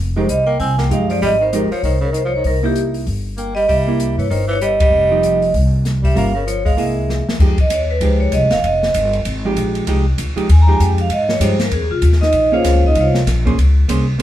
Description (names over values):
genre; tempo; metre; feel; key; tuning
jazz, small-group swing and bop; 194 BPM; 4/4; swing 61% on 8ths; F minor; A4 = 442 Hz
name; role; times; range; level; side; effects
upright bass; bass; 0.0-14.2 s; F1 to Ab2; -17 LUFS; equal; none
vibraphone with medium hard mallets; melody; 0.2-13.2 s; Eb4 to Bb5; -17 LUFS; right 1 dB; none
growling tenor saxophone; second line; 0.2-7.3 s; Bb2 to C4; -24 LUFS; equal; none
hollow-body jazz guitar; accompaniment; 0.2-14.2 s; F3 to C5; -21 LUFS; right 2 dB; none
open jazz drum kit; drums; 0.3-14.2 s; crash cymbal, hi-hat, kick drum, ride cymbal, snare drum; -22 LUFS; left 1 dB; none
room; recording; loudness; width
moderate stone room reverb, RT60 1.1 s; band playing live in one room; -13 LUFS; side -12 dB against mid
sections
0.0-7.4 A section; 7.4-14.2 B section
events
band accent 4.8; drum fill 7.1-7.4; vibraphone solo 7.4-14.2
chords
0.0 Fm9; 2.4 C7#9; 4.9 Fsus2; 6.2 Gm7b5; 6.8 Caug7; 7.4 Fm9; 12.3 Bbm9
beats
0.27 0.58 0.89 | 1.20 1.51 1.82 2.13 | 2.44 2.75 3.06 3.37 | 3.68 3.99 4.30 4.61 | 4.92 5.23 5.54 5.85 | 6.16 6.47 6.78 7.08 | 7.39 7.70 8.01 8.32 | 8.63 8.94 9.25 9.56 | 9.87 10.18 10.49 10.79 | 11.10 11.41 11.72 12.03 | 12.34 12.65 12.96 13.27 | 13.57 13.88 14.19